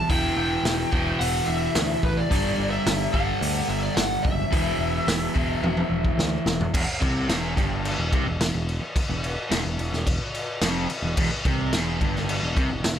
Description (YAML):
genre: hard rock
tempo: 108 BPM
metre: 4/4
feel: straight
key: E minor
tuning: A4 = 440 Hz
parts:
  - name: lead guitar through a small cranked amp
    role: melody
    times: 0.0-6.1 s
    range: B4 to G5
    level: -28 LUFS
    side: left 2 dB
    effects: overdrive
  - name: overdriven semi-hollow guitar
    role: riff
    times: 0.0-13.0 s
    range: E2 to G3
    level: -27 LUFS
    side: right 1 dB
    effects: spring reverb
  - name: picked electric bass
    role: bass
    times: 0.1-13.0 s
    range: E1 to D2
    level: -29 LUFS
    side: equal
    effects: none
  - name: raw garage drum kit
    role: drums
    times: 0.1-13.0 s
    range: crash cymbal, hi-hat, kick drum, snare drum, toms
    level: -25 LUFS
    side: equal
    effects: none
room: light reverb, studio reverb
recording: none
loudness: -22 LUFS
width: side -9 dB against mid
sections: 0.0-6.7 A section; 6.7-13.0 B section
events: drum fill 5.6-6.7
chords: 0.0 Em; 2.3 G5; 4.5 E5; 6.7 Em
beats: | 0.10 0.65 1.21 1.76 | 2.31 2.86 3.42 3.97 | 4.52 5.08 5.63 6.18 | 6.74 7.29 7.84 8.40 | 8.95 9.51 10.06 10.62 | 11.17 11.72 12.28 12.83